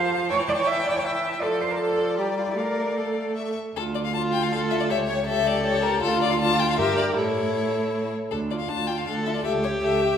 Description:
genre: quick classical-period movement for string quartet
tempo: 158 BPM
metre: 3/4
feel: straight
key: D minor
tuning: A4 = 443 Hz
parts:
  - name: clear violin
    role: melody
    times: 0.0-10.2 s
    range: A4 to C#6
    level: -28 LUFS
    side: left 7 dB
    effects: none
  - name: rich violin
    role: second line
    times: 0.0-10.2 s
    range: E4 to G5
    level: -27 LUFS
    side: left 2 dB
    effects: none
  - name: rich viola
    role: accompaniment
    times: 0.0-10.2 s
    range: E3 to Bb4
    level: -29 LUFS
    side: right 2 dB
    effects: none
  - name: rich cello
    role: bass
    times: 0.0-10.2 s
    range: C#2 to E5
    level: -27 LUFS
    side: right 3 dB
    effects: none
room: wet recital hall reverb, RT60 1.6 s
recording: heard from further back in the room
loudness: -22 LUFS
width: side -8 dB against mid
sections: 0.0-3.8 A section; 3.8-10.2 B section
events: none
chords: 0.3 A7/E; 1.4 Dm/F; 2.2 Em7b5/G; 2.6 Dm/A; 3.4 A; 3.8 Dm; 4.9 A7/C#; 6.0 Dm; 6.8 Gm; 7.2 A; 8.3 Dm; 9.5 A7/C#

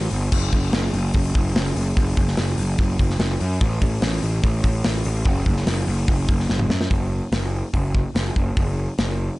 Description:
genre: heavy metal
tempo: 146 BPM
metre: 4/4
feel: straight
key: F# phrygian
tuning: A4 = 440 Hz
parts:
  - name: fuzz picked electric bass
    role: bass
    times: 0.0-9.3 s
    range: F#1 to F#2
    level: -21 LUFS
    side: equal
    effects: overdrive
  - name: modern studio drum kit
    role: drums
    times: 0.1-9.1 s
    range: crash cymbal, hi-hat, kick drum, snare drum, toms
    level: -22 LUFS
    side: equal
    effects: none
room: little or no reverb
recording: dark, warm production, nothing above 10.4 kHz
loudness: -19 LUFS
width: side -20 dB against mid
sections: 0.0-6.9 A section; 6.9-9.4 B section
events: drum fill 6.5-6.9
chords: none

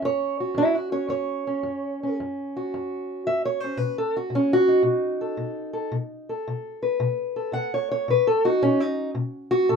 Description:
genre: acoustic country blues, solo or duo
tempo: 112 BPM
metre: 4/4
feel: swing 68% on 8ths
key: unclear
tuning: A4 = 440 Hz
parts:
  - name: fingerpicked steel-string acoustic guitar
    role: solo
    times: 0.0-9.8 s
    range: F#2 to F#5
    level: -22 LUFS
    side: equal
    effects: none
room: light reverb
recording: minimal, uncompressed stereo recording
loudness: -22 LUFS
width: side -6 dB against mid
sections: 0.0-9.8 A section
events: steel-string acoustic guitar solo 0.0-9.8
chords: 0.0 F#5; 3.8 B7

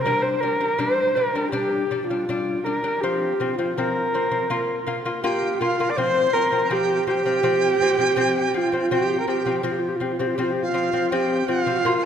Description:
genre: mongolian traditional, Mongolian folk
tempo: 81 BPM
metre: 4/4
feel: straight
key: unclear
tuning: A4 = 440 Hz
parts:
  - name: dark horsehead fiddle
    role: melody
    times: 0.0-12.1 s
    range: F4 to D5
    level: -22 LUFS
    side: right 1 dB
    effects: none
  - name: lute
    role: arpeggios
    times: 0.1-12.1 s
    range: F3 to F4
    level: -25 LUFS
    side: left 3 dB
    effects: none
  - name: bright dizi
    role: second line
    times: 5.2-12.1 s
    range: F5 to D6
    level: -27 LUFS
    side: right 5 dB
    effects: none
room: wet concert hall reverb, RT60 2.0 s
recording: none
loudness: -20 LUFS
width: side -8 dB against mid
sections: 0.0-6.0 A section; 6.0-12.1 B section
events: none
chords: 0.1 G5; 3.0 F5; 4.5 Bb5; 6.0 F5

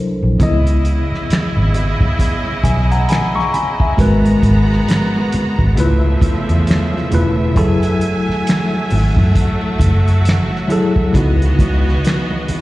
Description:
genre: R&B, neo-soul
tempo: 67 BPM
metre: 4/4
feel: swing 60% on 16ths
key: C# minor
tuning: A4 = 440 Hz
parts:
  - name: mellow tine electric piano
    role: accompaniment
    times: 0.0-12.6 s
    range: C#3 to C#6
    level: -18 LUFS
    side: left 1 dB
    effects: medium stereo tremolo, slapback echo
  - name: vintage muted fingered electric bass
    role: bass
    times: 0.2-12.5 s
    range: E1 to F#2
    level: -14 LUFS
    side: equal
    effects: none
  - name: bright studio string section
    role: sustained chords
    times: 0.4-12.6 s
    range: C#3 to A#5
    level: -22 LUFS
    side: right 1 dB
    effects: none
  - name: warm soul drum kit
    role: drums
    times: 0.4-12.6 s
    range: finger snaps, hi-hat, kick drum, snare drum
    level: -17 LUFS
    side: equal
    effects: none
  - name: congas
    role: percussion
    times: 0.4-12.6 s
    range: none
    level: -27 LUFS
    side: right 1 dB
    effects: none
room: small room ambience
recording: live gig heard through the venue's PA, recital hall reverb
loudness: -12 LUFS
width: side -17 dB against mid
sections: 0.4-12.6 A section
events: none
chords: 0.4 C#m9; 4.0 G#m9; 5.8 C#7alt; 7.6 F#m9; 11.1 C#m11

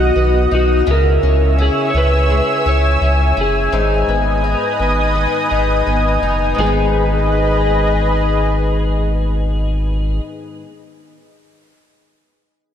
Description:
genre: dream pop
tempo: 84 BPM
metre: 4/4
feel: straight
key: G# minor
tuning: A4 = 438 Hz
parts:
  - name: electric slide guitar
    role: melody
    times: 0.0-10.2 s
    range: F#4 to C#5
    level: -21 LUFS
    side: equal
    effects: lush chorus, analog delay
  - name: lush unison pad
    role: sustained chords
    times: 0.0-10.2 s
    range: B3 to E6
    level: -19 LUFS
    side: equal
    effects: chorus
  - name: fingerpicked twelve-string acoustic guitar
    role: arpeggios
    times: 0.0-10.7 s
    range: G#2 to E4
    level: -22 LUFS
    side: left 4 dB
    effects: wide subtle chorus, analog delay
  - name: round analog bass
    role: bass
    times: 0.0-10.2 s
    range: F#1 to C#2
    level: -16 LUFS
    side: equal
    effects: none
room: wet plate reverb, RT60 2.3 s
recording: dreamy mix soaked in reverb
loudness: -13 LUFS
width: side -9 dB against mid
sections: 0.0-6.6 A section; 6.6-9.4 B section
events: none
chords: 0.0 B; 0.9 C#m; 3.7 G#m

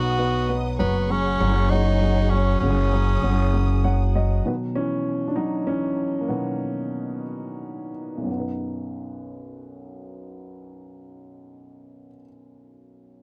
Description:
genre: six-eight pop ballad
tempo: 56-66 BPM (dotted quarters)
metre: 6/8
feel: straight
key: B major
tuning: A4 = 440 Hz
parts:
  - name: bright tenor saxophone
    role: melody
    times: 0.0-4.1 s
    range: B3 to F#4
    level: -28 LUFS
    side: equal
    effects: none
  - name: warm upright piano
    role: accompaniment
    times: 0.0-13.2 s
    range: B1 to F#5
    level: -29 LUFS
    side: equal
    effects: none
  - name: warm studio string section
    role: sustained chords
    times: 0.0-4.4 s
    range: G#4 to D#6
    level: -35 LUFS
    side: equal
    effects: none
  - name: upright bass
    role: bass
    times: 0.0-4.4 s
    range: F#1 to B1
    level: -24 LUFS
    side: equal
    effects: none
room: little or no reverb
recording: dry, close 1970s-style studio recording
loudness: -23 LUFS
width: mono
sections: 0.0-4.4 A section; 4.4-8.3 B section; 8.3-12.5 C section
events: upright piano fill 3.5-4.4; slowing down 4.4-8.3; upright piano solo 4.4-8.3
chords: 0.0 B; 0.8 F#sus2; 4.4 B

